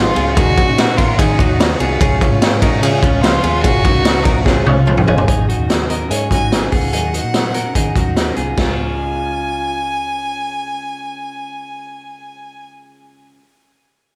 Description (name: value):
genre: jangly indie pop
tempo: 146 BPM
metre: 4/4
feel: straight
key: Db major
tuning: A4 = 440 Hz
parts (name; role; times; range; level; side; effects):
- rich violin; melody; 0.0-12.7 s; Db4 to Ab5; -24 LUFS; equal; none
- overdriven combo organ; accompaniment; 0.0-5.3 s; Db4 to Eb5; -28 LUFS; equal; none
- picked steel-string acoustic guitar; accompaniment; 0.0-13.4 s; Ab2 to Bb4; -30 LUFS; equal; none
- direct-recorded clean electric guitar; arpeggios; 0.0-9.8 s; Db4 to Bb4; -24 LUFS; equal; harmonic tremolo, slapback echo
- vintage muted fingered electric bass; bass; 0.0-13.4 s; Gb1 to Eb3; -24 LUFS; equal; none
- raw garage drum kit; drums; 0.2-8.7 s; china cymbal, hi-hat, kick drum, ride cymbal, snare drum, toms; -17 LUFS; equal; none
room: moderate recital hall reverb, RT60 1.5 s, small room ambience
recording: big arena sound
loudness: -15 LUFS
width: mono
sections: 0.0-5.3 A section; 5.3-8.6 B section; 8.6-11.9 C section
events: drum fill 4.5-5.3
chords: 0.4 Ebm7; 2.0 Db; 3.6 Gbmaj7; 4.5 Dbmaj7; 5.3 Ab7sus4; 6.9 Ebm7; 8.6 Db